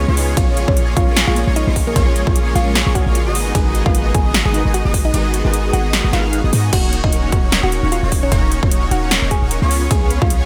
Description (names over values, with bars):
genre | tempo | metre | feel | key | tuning
future bass | 151 BPM | 4/4 | swing 56% on 16ths, half-time | Eb minor | A4 = 439 Hz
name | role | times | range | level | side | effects
warm grand piano | accompaniment | 0.0-6.8 s | Bb2 to Db5 | -30 LUFS | equal | sidechain pumping, dub echo
shimmering ambient pad | sustained chords | 0.0-6.7 s | Db3 to Gb4 | -32 LUFS | equal | none
airy dreamy lead | arpeggios | 0.0-10.5 s | Db6 to F6 | -31 LUFS | equal | chorus, sidechain pumping
supersaw chords | riff | 0.0-10.5 s | Bb3 to F5 | -26 LUFS | equal | ensemble chorus, sidechain pumping
warm 808-style bass | bass | 0.0-10.5 s | Eb1 to Ab2 | -21 LUFS | equal | sidechain pumping
big-room dance drum kit | drums | 0.2-10.4 s | crash cymbal, hi-hat, ride cymbal, snare drum | -23 LUFS | equal | none
mallet-like synth pluck | melody | 0.4-10.4 s | Bb3 to Ab5 | -27 LUFS | equal | chorus, phaser, sidechain pumping, dub echo
electronic kick drum | drums | 0.4-10.3 s | none | -19 LUFS | equal | none
concert harp | arpeggios | 6.7-10.5 s | Db4 to Cb5 | -34 LUFS | equal | none
room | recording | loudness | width
digital ambience | none | -16 LUFS | mono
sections
0.0-6.7 A section; 6.7-10.5 A section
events
drop 0.0-6.7, 6.7-10.5; kick drops out 5.1-6.7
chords
0.4 Bbm7; 3.4 Abm7; 6.7 Ebm7; 9.7 Db7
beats
| 0.37 0.77 1.17 1.56 | 1.96 2.36 2.75 3.15 | 3.55 3.95 4.34 4.74 | 5.14 5.54 5.93 6.33 | 6.73 7.13 7.52 7.92 | 8.32 8.71 9.11 9.51 | 9.91 10.30